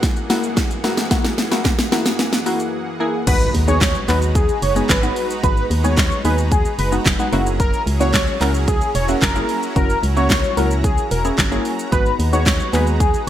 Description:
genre	dance-pop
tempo	111 BPM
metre	4/4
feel	straight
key	G# minor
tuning	A4 = 441 Hz
part	glassy wavetable pluck	accompaniment	0.0-13.3 s	G#3 to G#4	-23 LUFS	left 1 dB	chorus, sidechain pumping
part	supersaw pad	sustained chords	0.0-13.3 s	F#2 to A#5	-28 LUFS	right 1 dB	wide subtle chorus, sidechain pumping
part	pop drum kit	drums	0.0-13.3 s	crash cymbal, handclaps, hi-hat, kick drum, shaker, snare drum	-19 LUFS	equal	gated reverb
part	group handclap	percussion	0.6-12.6 s	none	-34 LUFS	right 9 dB	none
part	octave-doubled lead	melody	3.3-13.3 s	G#4 to C#5	-22 LUFS	equal	chorus, phaser
part	organ-like FM bass	bass	3.3-13.3 s	E1 to D#2	-20 LUFS	equal	sidechain pumping
part	impact	sound effects	3.3-5.4 s	none	-28 LUFS	equal	none
room	light reverb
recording	bright 1980s-style digital production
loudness	-15 LUFS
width	side -11 dB against mid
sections	0.0-3.3 A section; 3.3-13.3 B section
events	build-up 0.0-3.3; drum fill 0.0-2.7; break 2.7-3.3; drop 3.3-13.3; impact 3.3-5.4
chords	0.0 F#7; 3.3 G#m7; 7.3 F#7; 11.9 G#m7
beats	0.03 0.57 | 1.11 1.65 2.19 2.73 | 3.27 3.81 4.35 4.89 | 5.43 5.98 6.52 7.06 | 7.60 8.14 8.68 9.22 | 9.76 10.30 10.84 11.38 | 11.92 12.46 13.00

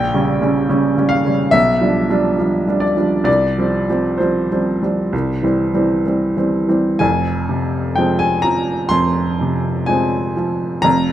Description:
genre	classical, romantic nocturne for solo piano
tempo	61-73 BPM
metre	4/4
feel	rubato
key	F minor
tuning	A4 = 440 Hz
part	clear grand piano	solo	0.0-11.1 s	F1 to C6	-14 LUFS	equal	none
room	moderate stone room reverb, RT60 1.2 s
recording	none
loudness	-15 LUFS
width	side -12 dB against mid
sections	0.0-7.0 A section; 7.0-11.1 B section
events	none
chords	0.0 Gdim/Bb; 1.5 G7/B; 3.3 Csus4; 5.1 C; 7.0 Fm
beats	0.68 1.52 2.38 | 3.27 4.20 5.13 6.05 | 7.00 7.96 8.91 9.89 | 10.84

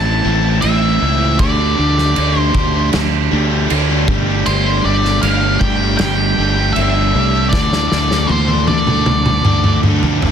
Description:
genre	quiet-loud alternative rock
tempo	78 BPM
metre	4/4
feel	straight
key	unclear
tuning	A4 = 440 Hz
part	octave-fuzz lead guitar	melody	0.0-9.8 s	C5 to A5	-19 LUFS	left 1 dB	distortion, digital delay
part	cranked stack guitar	riff	0.0-10.3 s	A2 to A4	-21 LUFS	right 14 dB	overdrive
part	crunchy overdriven guitar	riff	0.0-10.3 s	A2 to A4	-23 LUFS	right 2 dB	spring reverb
part	fuzz fingered electric bass	bass	0.0-10.3 s	G1 to D2	-17 LUFS	equal	overdrive
part	thick fuzz guitar	riff	0.2-10.3 s	A2 to A4	-22 LUFS	left 12 dB	distortion
part	loose indie drum kit	drums	0.6-10.3 s	crash cymbal, kick drum, snare drum, toms	-19 LUFS	equal	none
room	small room ambience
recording	dense, heavily limited modern master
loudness	-12 LUFS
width	side -8 dB against mid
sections	0.0-10.3 A section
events	drum fill 7.5-10.3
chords	0.0 Am; 1.4 Dsus4; 4.1 Gsus2; 7.5 Dsus2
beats	0.62 | 1.39 2.16 2.93 3.70 | 4.46 5.23 6.00 6.77 | 7.54 8.30 9.07 9.85

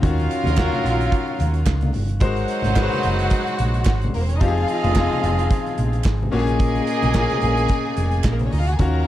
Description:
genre	disco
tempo	110 BPM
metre	4/4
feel	swing 56% on 16ths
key	Eb dorian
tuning	A4 = 440 Hz
part	rich studio string section	second line	0.0-9.1 s	Bb3 to Bb5	-27 LUFS	equal	none
part	clear baby grand piano	accompaniment	0.0-9.1 s	Bb2 to C5	-24 LUFS	left 5 dB	none
part	clear horn section	stabs	0.0-9.1 s	Gb3 to Eb5	-28 LUFS	right 7 dB	none
part	hollow-body short-scale fingered electric bass	bass	0.0-9.0 s	Fb1 to Eb2	-21 LUFS	right 1 dB	none
part	modern studio drum kit	drums	0.0-8.9 s	handclaps, hi-hat, kick drum, snare drum	-23 LUFS	right 1 dB	none
part	congas	percussion	0.0-9.1 s	none	-30 LUFS	left 2 dB	none
part	group handclap	percussion	0.6-8.4 s	none	-36 LUFS	right 18 dB	none
room	small room ambience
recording	dark, warm production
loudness	-18 LUFS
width	side -13 dB against mid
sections	0.0-9.1 A section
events	none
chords	0.0 Ebm9; 2.2 Ab9; 4.4 Fm7; 6.3 Bbm7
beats	| 0.03 0.58 1.13 1.67 | 2.22 2.77 3.32 3.87 | 4.41 4.96 5.51 6.06 | 6.60 7.15 7.70 8.25 | 8.79

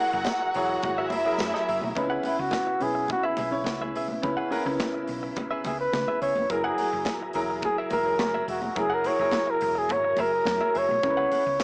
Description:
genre	disco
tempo	106 BPM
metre	4/4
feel	straight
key	C# dorian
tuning	A4 = 441 Hz
part	warm studio violin section	second line	0.0-1.9 s	E4 to F#5	-26 LUFS	equal	cassette tape
part	clear grand piano	accompaniment	0.0-11.6 s	C#3 to C#5	-31 LUFS	equal	cassette tape
part	direct-recorded clean electric guitar	accompaniment	0.0-11.6 s	G#4 to F#5	-32 LUFS	right 1 dB	cassette tape
part	tonewheel organ	sustained chords	0.0-11.6 s	C#3 to A#4	-36 LUFS	equal	chorus vibrato, slow rotary speaker, cassette tape
part	hollow-body short-scale fingered electric bass	bass	0.1-11.6 s	E1 to C#3	-39 LUFS	equal	none
part	congas	percussion	0.2-11.6 s	none	-36 LUFS	equal	none
part	modern studio drum kit	drums	0.3-11.6 s	hi-hat, kick drum, snare drum	-36 LUFS	equal	cassette tape
part	tambourine	percussion	0.3-1.5, 11.6 s	none	-43 LUFS	right 1 dB	none
part	mellow flugelhorn	melody	2.3-11.6 s	E4 to C#5	-25 LUFS	equal	cassette tape, tape echo
room	moderate booth ambience, RT60 0.2 s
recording	home recording on cassette, small speaker sound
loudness	-23 LUFS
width	side -32 dB against mid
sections	0.0-2.0 A section; 2.0-11.6 B section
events	flugelhorn solo 2.0-11.6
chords	0.0 F#9; 2.0 C#m7; 6.5 F#9; 11.0 C#m7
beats	0.27 0.83 1.40 | 1.97 2.53 3.10 3.67 | 4.23 4.80 5.37 5.93 | 6.50 7.07 7.64 8.20 | 8.77 9.34 9.90 10.47 | 11.04 11.61

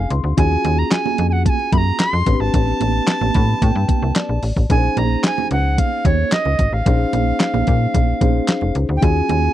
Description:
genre	early-eighties boogie funk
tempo	111 BPM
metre	4/4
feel	straight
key	Bb minor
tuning	A4 = 440 Hz
part	tenor recorder	melody	0.0-9.5 s	Db5 to C6	-22 LUFS	right 2 dB	none
part	mellow tine electric piano	accompaniment	0.0-9.5 s	C4 to C6	-24 LUFS	left 5 dB	none
part	slap-like FM bass	bass	0.0-9.5 s	F1 to Bb2	-18 LUFS	equal	none
part	clean 12-bit digital drum machine	drums	0.1-9.4 s	handclaps, hi-hat, kick drum, snare drum	-17 LUFS	equal	none
part	congas	percussion	0.4-9.4 s	none	-26 LUFS	right 20 dB	none
room	little or no reverb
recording	dry, close 1970s-style studio recording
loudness	-15 LUFS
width	side -13 dB against mid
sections	0.0-9.5 A section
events	tine electric piano fill 0.0-0.4, 3.1-4.7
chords	0.4 Ebm11; 2.3 Am11; 4.7 Bbm11; 9.0 Ebm11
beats	| 0.38 0.92 1.46 2.00 | 2.54 3.08 3.62 4.16 | 4.70 5.24 5.78 6.32 | 6.86 7.40 7.94 8.48 | 9.03

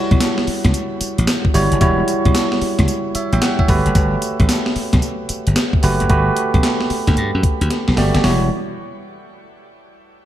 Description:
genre	R&B, new jack swing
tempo	112 BPM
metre	4/4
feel	swing 65% on 16ths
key	E dorian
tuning	A4 = 445 Hz
part	bell-like tine electric piano	accompaniment	0.0-8.5 s	G3 to G5	-20 LUFS	right 2 dB	shimmer reverb
part	slap bass	bass	0.1-8.5 s	E1 to G2	-19 LUFS	equal	none
part	gated 80s digital drum machine	drums	0.1-8.4 s	handclaps, hi-hat, kick drum, snare drum, tambourine	-18 LUFS	equal	gated reverb, gated reverb snare
room	moderate concert hall reverb, RT60 1.9 s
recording	dark, warm production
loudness	-14 LUFS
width	side -12 dB against mid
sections	0.0-8.2 A section; 8.2-10.3 B section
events	drum fill 7.7-8.2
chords	0.0 Em69; 3.7 Gmaj9; 8.2 Em69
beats	0.20 0.74 1.27 | 1.81 2.35 2.88 3.42 | 3.95 4.49 5.03 5.56 | 6.10 6.63 7.17 7.70 | 8.24

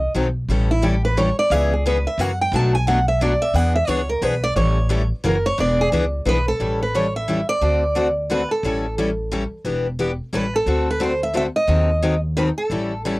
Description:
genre	acoustic string swing (jazz manouche)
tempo	177 BPM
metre	3/4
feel	swing 60% on 8ths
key	A major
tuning	A4 = 440 Hz
part	picked steel-string acoustic guitar	melody	0.0-13.0 s	E4 to A5	-21 LUFS	right 1 dB	cassette tape
part	upright bass	bass	0.0-13.2 s	E1 to F#2	-22 LUFS	equal	none
part	picked steel-string acoustic guitar	accompaniment	0.1-13.2 s	B2 to A4	-22 LUFS	left 2 dB	cassette tape
room	moderate booth ambience, RT60 0.2 s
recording	home recording on cassette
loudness	-18 LUFS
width	side -21 dB against mid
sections	0.0-6.6 A section; 6.6-13.2 B section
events	steel-string acoustic guitar solo 0.0-6.6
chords	0.5 A7; 1.5 C#m7; 2.2 F#7b9; 2.5 Bm7; 3.5 E7; 4.6 A7; 5.2 F#7; 5.6 E7; 6.6 A7; 7.6 D7; 8.6 A7; 9.7 Em7; 10.3 A7; 10.7 D7; 11.7 D#dim7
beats	0.15 | 0.49 0.83 1.17 | 1.51 1.85 2.19 | 2.53 2.87 3.21 | 3.55 3.89 4.23 | 4.57 4.91 5.25 | 5.58 5.92 6.26 | 6.60 6.94 7.28 | 7.62 7.96 8.30 | 8.64 8.98 9.31 | 9.65 9.99 10.33 | 10.67 11.01 11.35 | 11.69 12.03 12.37 | 12.71 13.05

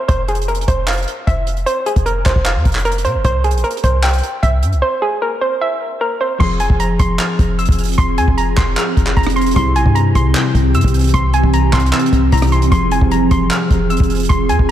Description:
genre	hip hop, trap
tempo	152 BPM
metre	4/4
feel	half-time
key	F harmonic minor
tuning	A4 = 439 Hz
part	hollow square pluck	melody	0.0-14.7 s	Ab4 to G6	-19 LUFS	right 1 dB	chorus, low-pass filter, diffuse ambient delay
part	warm 808-style bass	bass	0.1-14.7 s	F1 to C3	-17 LUFS	equal	none
part	compact cocktail drum kit	drums	0.1-14.7 s	crash cymbal, handclaps, hi-hat, kick drum, rim click	-17 LUFS	equal	none
part	concert harp	accompaniment	6.4-14.7 s	C3 to Ab4	-21 LUFS	left 3 dB	low-pass filter
part	ethereal airy pad	sustained chords	7.3-14.7 s	E3 to Ab4	-19 LUFS	right 2 dB	ensemble chorus, built-in reverb
room	moderate lush hall reverb, RT60 1.9 s, studio ambience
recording	dreamy mix soaked in reverb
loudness	-13 LUFS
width	side -11 dB against mid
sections	0.0-6.4 A section; 6.4-14.7 B section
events	break 4.8-6.4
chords	0.1 F5; 3.2 C; 6.4 Fm; 9.6 C; 12.7 Fm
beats	| 0.09 0.48 0.88 1.27 | 1.67 2.06 2.46 2.85 | 3.25 3.64 4.03 4.43 | 4.82 5.22 5.61 6.01 | 6.40 6.80 7.19 7.59 | 7.98 8.38 8.77 9.17 | 9.56 9.96 10.35 10.74 | 11.14 11.53 11.93 12.32 | 12.72 13.11 13.51 13.90 | 14.30 14.69

